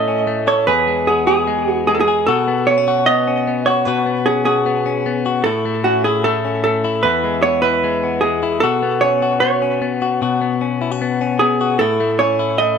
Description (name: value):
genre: indie pop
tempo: 151 BPM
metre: 4/4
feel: straight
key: unclear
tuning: A4 = 443 Hz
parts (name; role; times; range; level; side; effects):
- vintage hollow-body jazz guitar; melody; 0.0-12.8 s; F#4 to D#5; -16 LUFS; right 4 dB; digital delay
- direct-recorded clean electric guitar; arpeggios; 0.0-12.8 s; E2 to A4; -18 LUFS; left 6 dB; none
room: wet spring reverb, RT60 1.7 s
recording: none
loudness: -14 LUFS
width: side -6 dB against mid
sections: 0.0-12.8 A section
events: none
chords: 0.0 A; 0.7 E; 2.3 Bsus2; 5.5 A; 7.0 E; 8.6 Bsus2; 11.8 A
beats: 0.28 | 0.68 1.08 1.47 1.87 | 2.27 2.67 3.07 3.47 | 3.87 4.26 4.66 5.06 | 5.46 5.85 6.25 6.65 | 7.04 7.44 7.84 8.23 | 8.63 9.03 9.42 9.82 | 10.21 10.61 11.01 11.40 | 11.80 12.20 12.60